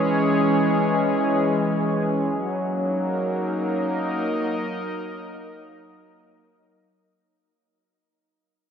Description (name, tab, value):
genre	ambient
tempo	free time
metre	none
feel	none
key	unclear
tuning	A4 = 440 Hz
part	warm analog pad	sustained chords	0.0-7.3 s	E3 to D#5	-21 LUFS	equal	chorus
room	wet huge ambient reverb, RT60 8.1 s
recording	dark, warm production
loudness	-21 LUFS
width	side -7 dB against mid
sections	0.0-7.2 A section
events	fade-out 0.6-7.2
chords	0.0 C#m; 2.3 D#m